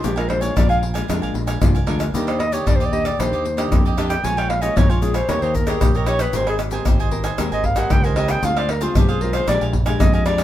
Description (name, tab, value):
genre	samba and choro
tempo	114 BPM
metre	4/4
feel	straight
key	unclear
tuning	A4 = 442 Hz
part	warm clarinet	melody	0.0-10.4 s	F4 to Ab5	-22 LUFS	equal	none
part	cavaquinho	accompaniment	0.0-10.4 s	D4 to Ab5	-29 LUFS	right 5 dB	none
part	nylon-string guitar	accompaniment	0.0-10.4 s	Bb2 to Bb4	-26 LUFS	left 3 dB	none
part	fingered electric bass	bass	0.0-10.4 s	Ab1 to F2	-23 LUFS	equal	none
part	egg shaker, surdo, pandeiro and tamborim	percussion	0.0-10.4 s	none	-20 LUFS	equal	none
room	moderate studio reverb, RT60 0.8 s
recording	minimal, uncompressed stereo recording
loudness	-16 LUFS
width	side -12 dB against mid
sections	0.0-10.4 A section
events	clarinet solo 0.0-10.4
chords	0.0 Bb7; 2.1 Ebmaj7; 4.2 Bbm7; 5.3 Eb7; 6.3 Abmaj9; 8.4 Dm7b5; 9.5 Bb6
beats	| 0.05 0.57 1.10 1.62 | 2.15 2.67 3.20 3.72 | 4.24 4.77 5.29 5.82 | 6.34 6.87 7.39 7.91 | 8.44 8.96 9.48 10.01